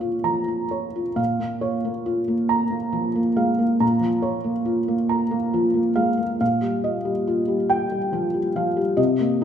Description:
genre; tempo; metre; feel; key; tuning
neoclassical minimalist piano; 46 BPM (dotted quarters); 6/8; rubato; Bb dorian; A4 = 441 Hz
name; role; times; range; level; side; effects
felt-muted upright piano; solo; 0.0-9.4 s; Bb2 to Bb5; -20 LUFS; equal; none
room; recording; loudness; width
moderate scoring stage reverb, RT60 1.6 s; minimal, uncompressed stereo recording; -20 LUFS; side -8 dB against mid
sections
0.0-1.2 A section; 1.2-9.4 B section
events
none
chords
0.0 Bbm; 6.4 Ebadd9/Bb

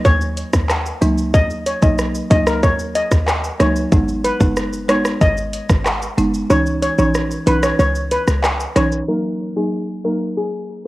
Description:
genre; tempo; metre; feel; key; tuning
dancehall; 93 BPM; 4/4; straight; unclear; A4 = 440 Hz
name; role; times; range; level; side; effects
steel pan; melody; 0.1-10.5 s; G#4 to D#5; -20 LUFS; left 1 dB; analog delay
short 808-style bass; bass; 0.1-9.0 s; F#1 to D#2; -20 LUFS; equal; none
island pop drum kit; drums; 0.1-9.1 s; handclaps, hi-hat, kick drum, rim click, shaker; -18 LUFS; equal; cassette tape
folk marimba with medium mallets; accompaniment; 1.0-10.2 s; E3 to D#4; -21 LUFS; right 1 dB; cassette tape
room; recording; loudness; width
light reverb; home recording on cassette, low-pass filter; -15 LUFS; side -18 dB against mid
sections
0.0-9.1 A section; 9.1-10.9 B section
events
kick muted 6.5-9.1; filter sweep 9.1-10.9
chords
0.0 D#m; 3.9 G#m; 6.5 C#madd9; 9.1 D#m

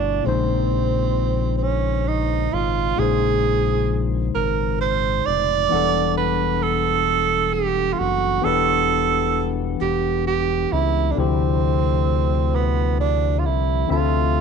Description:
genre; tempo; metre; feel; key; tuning
slow six-eight R&B; 44 BPM (dotted quarters); 6/8; straight; unclear; A4 = 438 Hz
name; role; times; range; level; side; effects
breathy tenor saxophone; melody; 0.0-14.4 s; B3 to D5; -21 LUFS; right 12 dB; slapback echo
overdriven tine electric piano; accompaniment; 0.0-14.4 s; A#2 to F#5; -24 LUFS; left 14 dB; none
round analog bass; bass; 0.0-14.4 s; E1 to D2; -23 LUFS; left 1 dB; none
room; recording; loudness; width
light reverb, small room ambience; 1960s-style stereo with parts hard left and right, nothing above 10.8 kHz; -18 LUFS; side -6 dB against mid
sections
0.0-14.4 A section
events
none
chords
0.2 A#m11; 5.7 Em11; 11.2 Dm11

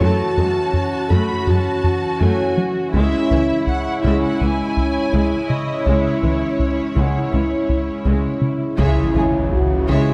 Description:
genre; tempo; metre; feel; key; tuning
cinematic, hybrid orchestral and electronic film score; 82 BPM; 4/4; straight; C# minor; A4 = 439 Hz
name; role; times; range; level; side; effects
warm symphonic violin section; melody; 0.0-8.4 s; C#5 to B5; -30 LUFS; equal; none
rich symphonic viola section; accompaniment; 0.0-10.1 s; E3 to G#4; -26 LUFS; equal; none
chorused pulse-width pad; sustained chords; 0.0-10.1 s; E3 to C#5; -24 LUFS; equal; none
resonant blip pluck; arpeggios; 0.0-10.1 s; C#3 to F#4; -30 LUFS; equal; none
tight sequencer bass; riff; 0.0-10.1 s; C#2 to F#3; -24 LUFS; equal; none
warm symphonic cello section; bass; 0.0-10.0 s; C#2 to C#3; -26 LUFS; equal; none
warm grand piano; texture; 0.0-10.1 s; F#5 to G#6; -36 LUFS; equal; none
warm symphonic violin section; second line; 8.8-10.1 s; G#4 to E5; -32 LUFS; equal; none
mellow French horn section; sustained chords; 8.8-10.1 s; E4 to F#4; -24 LUFS; equal; none
rich symphonic double bass section; bass; 8.8-10.0 s; C#2; -29 LUFS; equal; none
detuned saw bass; bass; 8.8-10.1 s; C#2; -26 LUFS; equal; chorus
taiko ensemble; drums; 8.8-10.1 s; none; barely audible; none; none
impact; sound effects; 8.8-10.1 s; none; -27 LUFS; equal; none
room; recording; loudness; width
moderate scoring stage reverb, RT60 1.5 s; none; -19 LUFS; mono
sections
0.0-8.8 A section; 8.8-10.1 A section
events
impact 8.8-10.1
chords
0.0 F#madd9; 2.9 C#m

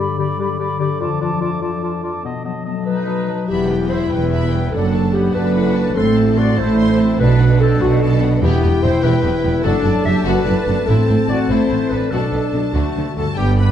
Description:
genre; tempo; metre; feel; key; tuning
cinematic, heroic adventure film score; 97 BPM (dotted quarters); 6/8; straight; E minor from 3.5 s; A4 = 440 Hz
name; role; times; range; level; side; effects
dark clarinet; second line; 0.0-13.7 s; B3 to E5; -24 LUFS; left 2 dB; none
mellow hollow small flute group; second line; 0.0-3.5, 13.4-13.7 s; G5 to B5; -29 LUFS; left 2 dB; none
warm oboe; second line; 0.0-3.5, 13.4-13.7 s; D5 to D#5; -28 LUFS; right 1 dB; none
concert harp; arpeggios; 0.0-13.7 s; E2 to B4; -24 LUFS; left 7 dB; none
warm symphonic viola section; accompaniment; 2.9-13.7 s; D3 to E5; -27 LUFS; right 2 dB; none
clear trumpet section; stabs; 2.9-13.7 s; A3 to B4; -29 LUFS; right 1 dB; none
rich symphonic violin section; melody; 3.5-13.7 s; F#5 to C6; -30 LUFS; left 2 dB; none
warm symphonic violin section; second line; 3.5-13.7 s; B3 to E5; -30 LUFS; left 4 dB; none
mellow French horn section; sustained chords; 3.5-13.7 s; G3 to F#4; -23 LUFS; left 4 dB; none
clear symphonic double bass section; bass; 3.5-13.7 s; E1 to D2; -20 LUFS; right 3 dB; none
rich symphonic cello section; bass; 3.5-13.7 s; E2 to D3; -19 LUFS; right 3 dB; none
timpani; percussion; 8.4-9.0 s; E2; -21 LUFS; equal; none
room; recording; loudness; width
moderate scoring stage reverb, RT60 1.6 s; dark, warm production; -14 LUFS; side -9 dB against mid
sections
0.0-3.5 A section; 3.5-13.4 B section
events
none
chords
0.0 G; 1.0 Dm/F; 2.2 B7; 3.5 Em; 4.7 D/F#; 6.0 Am; 7.2 Bm7; 8.4 Em; 9.7 D/F#; 10.9 Am; 12.1 Bm7; 12.7 D7

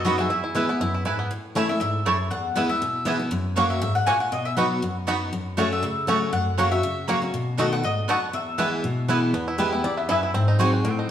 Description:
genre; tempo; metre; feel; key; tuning
bluegrass; 239 BPM; 4/4; swing 54% on 8ths; E major; A4 = 439 Hz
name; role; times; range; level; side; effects
bluegrass banjo; melody; 0.0-11.1 s; A3 to A4; -30 LUFS; right 2 dB; none
mandolin; melody; 0.0-9.1 s; C#5 to G#5; -27 LUFS; left 2 dB; none
lap resonator guitar; second line; 0.0-1.0, 9.6-10.3 s; F#4 to E5; -28 LUFS; left 3 dB; none
picked steel-string acoustic guitar; accompaniment; 0.0-11.1 s; E2 to G#4; -24 LUFS; left 1 dB; none
mandolin; stabs; 0.0-10.7 s; A3 to B5; -28 LUFS; right 4 dB; none
room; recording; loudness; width
wet stone room reverb, RT60 1.4 s; band playing live in one room; -21 LUFS; side -10 dB against mid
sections
0.0-1.3 A section; 1.3-9.3 B section; 9.3-11.1 C section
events
resonator guitar played with a steel bar solo 9.3-11.1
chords
0.3 E; 1.3 A; 2.3 E; 3.3 F#; 4.3 B; 5.3 F#m; 6.3 F#; 7.3 B7; 8.3 E; 10.3 G#7

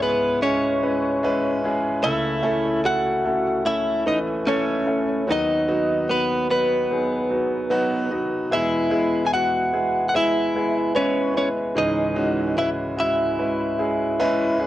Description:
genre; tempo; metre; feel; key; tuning
pop; 74 BPM; 4/4; straight; C# minor; A4 = 442 Hz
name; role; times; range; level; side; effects
direct-recorded clean electric guitar; melody; 0.0-14.6 s; B3 to G#5; -22 LUFS; equal; wide subtle chorus, cassette tape
warm concert grand piano; accompaniment; 0.0-14.7 s; C#2 to F#5; -23 LUFS; equal; cassette tape
room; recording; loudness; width
light reverb, studio ambience; home recording on cassette; -19 LUFS; side -14 dB against mid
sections
0.0-14.7 A section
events
grand piano fill 7.3-8.5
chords
0.0 C#m; 2.0 A/C#; 5.3 B/D#; 8.5 E; 11.8 C#m

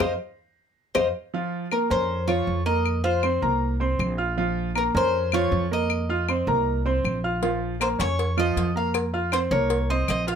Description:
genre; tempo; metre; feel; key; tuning
latin, Cuban son and guajira; 158 BPM; 4/4; straight; Bb minor; A4 = 440 Hz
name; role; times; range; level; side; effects
Cuban tres; melody; 0.0-10.4 s; Bb4 to F5; -27 LUFS; left 2 dB; none
clear grand piano; arpeggios; 0.0-10.4 s; F3 to F6; -25 LUFS; right 2 dB; none
upright bass; bass; 0.0-10.4 s; Bb1 to F2; -27 LUFS; equal; none
bongos and cowbell; percussion; 0.0-1.0, 7.4-10.4 s; none; -30 LUFS; left 4 dB; none
claves; percussion; 1.0-10.3 s; none; -30 LUFS; left 7 dB; none
room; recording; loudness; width
moderate studio ambience, RT60 0.5 s; none; -22 LUFS; side -7 dB against mid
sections
0.0-1.3 A section; 1.3-10.4 A section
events
band accent 0.0-1.3; drum fill 0.4-1.3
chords
0.0 F5; 1.3 Bbm; 2.9 Fsus4; 4.4 Bbm; 5.9 F7sus4; 7.4 Bbm; 8.9 Fsus4

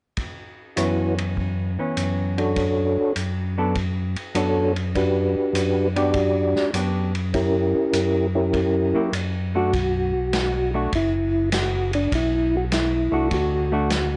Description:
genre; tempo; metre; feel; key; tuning
soul jazz organ trio; 100 BPM; 4/4; swing 69% on 8ths; B minor; A4 = 438 Hz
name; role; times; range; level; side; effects
vintage drum kit; drums; 0.2-14.1 s; hi-hat, kick drum, ride cymbal, snare drum; -32 LUFS; equal; none
percussive tonewheel organ; melody; 0.8-14.2 s; C#4 to D5; -24 LUFS; equal; slow rotary speaker, chorus vibrato, plate reverb
hollow-body jazz guitar; accompaniment; 0.8-13.9 s; E3 to A4; -29 LUFS; equal; none
tonewheel organ; bass; 0.8-14.2 s; F#1 to F#2; -28 LUFS; equal; overdrive, chorus vibrato, slow rotary speaker
room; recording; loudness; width
light reverb; worn, warbling old tape, cassette tape, warbly pitch drift, nothing above 10.6 kHz; -22 LUFS; mono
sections
0.2-9.7 A section; 9.7-14.2 B section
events
none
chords
0.2 F#7sus4; 2.6 Bm7/F#; 5.0 Gmaj7/F#; 7.3 F#7b9; 9.7 Bm7

